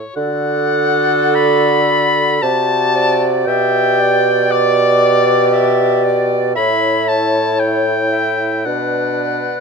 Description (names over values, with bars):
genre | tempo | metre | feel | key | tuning
classical, slow romantic movement for wind quintet | 57 BPM | 3/4 | rubato | D major | A4 = 440 Hz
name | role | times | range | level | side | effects
clear oboe | second line | 0.0-9.6 s | C#5 to B5 | -17 LUFS | left 3 dB | none
mellow bassoon | bass | 0.0-9.6 s | A2 to D3 | -18 LUFS | right 3 dB | none
concert flute | melody | 0.2-9.6 s | B4 to D5 | -20 LUFS | left 8 dB | none
clear French horn | accompaniment | 0.2-9.6 s | D4 to G4 | -22 LUFS | equal | none
warm clarinet | accompaniment | 0.2-9.6 s | A4 to E5 | -21 LUFS | right 14 dB | none
room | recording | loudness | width
light reverb | none | -12 LUFS | side -5 dB against mid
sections
0.2-9.6 A section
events
none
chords
0.2 D; 2.4 D7/C; 3.5 G/B; 6.6 A; 8.7 Bm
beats
| 0.16 1.34 2.42 | 3.47 4.51 5.53 | 6.56 7.60 8.66